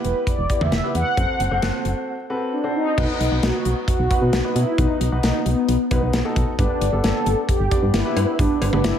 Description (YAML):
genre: synth-pop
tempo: 133 BPM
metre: 4/4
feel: straight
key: unclear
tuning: A4 = 440 Hz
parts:
  - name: mellow synth brass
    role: melody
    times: 0.0-9.0 s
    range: B3 to F#5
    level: -23 LUFS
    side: left 1 dB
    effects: chorus, tape echo
  - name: warm concert grand piano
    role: accompaniment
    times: 0.0-9.0 s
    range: B3 to D5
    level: -27 LUFS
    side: left 1 dB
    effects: none
  - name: solid FM bass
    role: bass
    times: 0.0-8.9 s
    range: E1 to B2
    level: -22 LUFS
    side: equal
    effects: none
  - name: modern studio drum kit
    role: drums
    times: 0.0-8.9 s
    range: cowbell, crash cymbal, hi-hat, kick drum, snare drum, toms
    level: -23 LUFS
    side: equal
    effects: none
room: moderate plate reverb, RT60 1.6 s, small room ambience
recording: dreamy mix soaked in reverb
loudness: -18 LUFS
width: side -9 dB against mid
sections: 0.0-3.0 A section; 3.0-9.0 B section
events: break 2.1-3.0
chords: 0.0 Em; 1.2 F#dim; 3.0 B; 6.6 G